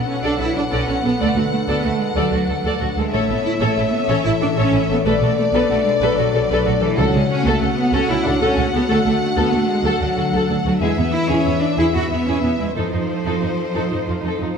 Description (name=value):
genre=cinematic, heroic adventure film score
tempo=124 BPM (dotted quarters)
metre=12/8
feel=straight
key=unclear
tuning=A4 = 440 Hz
part: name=warm symphonic violin section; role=melody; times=0.0-14.6 s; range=C5 to F#5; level=-26 LUFS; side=left 3 dB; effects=none
part: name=warm French horn section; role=sustained chords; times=0.0-14.6 s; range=Eb4 to D5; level=-24 LUFS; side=left 3 dB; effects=none
part: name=concert harp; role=arpeggios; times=0.0-14.6 s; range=A2 to C5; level=-26 LUFS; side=left 8 dB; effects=none
part: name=rich symphonic cello section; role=bass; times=0.0-14.5 s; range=E3 to F#4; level=-21 LUFS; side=right 2 dB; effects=none
part: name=rich symphonic violin section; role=second line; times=0.2-14.5 s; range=B3 to D5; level=-27 LUFS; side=left 2 dB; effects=none
part: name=rich symphonic viola section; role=accompaniment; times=0.2-14.5 s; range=Eb4 to A4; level=-26 LUFS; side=left 1 dB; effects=none
part: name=rich symphonic double bass section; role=bass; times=0.2-14.5 s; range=A1 to F2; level=-24 LUFS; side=right 4 dB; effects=none
part: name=timpani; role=percussion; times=7.0-7.4 s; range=C#3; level=-24 LUFS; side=equal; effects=none
room=moderate concert hall reverb, RT60 2.1 s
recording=none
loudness=-16 LUFS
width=side -6 dB against mid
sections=0.0-14.6 A section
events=none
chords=0.0 Bm7; 1.2 D; 3.1 A; 5.1 Bm7; 7.0 F#m/C#; 8.9 D; 10.8 E; 12.8 F7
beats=0.23 0.71 | 1.20 1.68 2.16 2.65 | 3.13 3.61 4.10 4.58 | 5.06 5.54 6.02 6.50 | 6.98 7.46 7.94 8.42 | 8.90 9.38 9.86 10.34 | 10.82 11.30 11.79 12.27 | 12.76 13.26 13.75 14.24